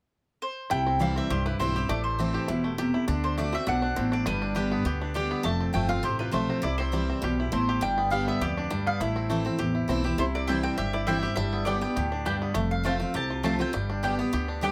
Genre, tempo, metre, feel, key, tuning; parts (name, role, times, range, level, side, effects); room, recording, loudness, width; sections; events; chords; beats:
bluegrass; 203 BPM; 4/4; swing 53% on 8ths; C major; A4 = 443 Hz
mandolin; melody; 0.4-14.7 s; B4 to A5; -34 LUFS; equal; plate reverb
bluegrass banjo; melody; 0.7-14.7 s; G3 to G4; -35 LUFS; equal
picked steel-string acoustic guitar; accompaniment; 0.7-14.7 s; E2 to G4; -31 LUFS; equal
upright bass; bass; 0.7-14.7 s; E1 to D2; -34 LUFS; equal
mandolin; stabs; 10.5-14.7 s; B3 to A5; -32 LUFS; equal
moderate studio reverb, RT60 0.5 s; -27 LUFS; mono
0.7-14.7 A section
0.0 N.C.; 0.7 C; 1.9 Am; 3.1 D7; 4.3 G; 5.4 F; 6.6 C; 7.8 G; 9.0 Am; 10.2 C; 11.4 G; 12.6 F; 13.7 G
0.12 0.41 | 0.71 1.00 1.30 1.60 | 1.89 2.19 2.49 2.78 | 3.08 3.38 3.67 3.97 | 4.26 4.56 4.86 5.15 | 5.45 5.74 6.04 6.33 | 6.63 6.93 7.22 7.52 | 7.82 8.11 8.41 8.70 | 9.00 9.29 9.59 9.89 | 10.18 10.48 10.78 11.07 | 11.37 11.66 11.96 12.26 | 12.55 12.85 13.14 13.44 | 13.74 14.03 14.33 14.62